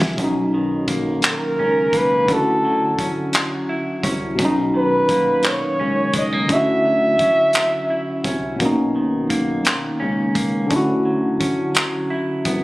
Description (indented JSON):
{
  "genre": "slow six-eight R&B",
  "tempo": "57 BPM (dotted quarters)",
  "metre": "6/8",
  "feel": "straight",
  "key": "unclear",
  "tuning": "A4 = 439 Hz",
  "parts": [
    { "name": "semi-hollow electric guitar", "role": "second line", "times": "0.0-12.6 s", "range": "B2 to E4", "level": "-27 LUFS", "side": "right 2 dB", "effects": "none" },
    { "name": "tine electric piano", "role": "accompaniment", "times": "0.0-12.6 s", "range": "B2 to F#4", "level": "-21 LUFS", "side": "left 1 dB", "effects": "medium stereo tremolo" },
    { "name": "rubbery square bass", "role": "bass", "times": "0.0-12.6 s", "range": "B1 to D2", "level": "-26 LUFS", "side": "equal", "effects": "none" },
    { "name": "warm soul drum kit", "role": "drums", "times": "0.0-12.6 s", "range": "handclaps, hi-hat, kick drum, snare drum", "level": "-21 LUFS", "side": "equal", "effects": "none" },
    { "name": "breathy flugelhorn", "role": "melody", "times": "1.3-8.3 s", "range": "A4 to E5", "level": "-18 LUFS", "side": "equal", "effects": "none" }
  ],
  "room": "light reverb, studio reverb",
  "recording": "recorded on a phone in the room, compression",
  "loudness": "-17 LUFS",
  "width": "side -19 dB against mid",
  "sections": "0.2-12.6 A section",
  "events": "drum fill 0.0",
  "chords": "0.2 Bmaj9; 2.3 Dmaj9; 4.4 Bmaj9; 6.5 Dmaj9; 8.6 Bmaj9; 10.7 Dmaj9"
}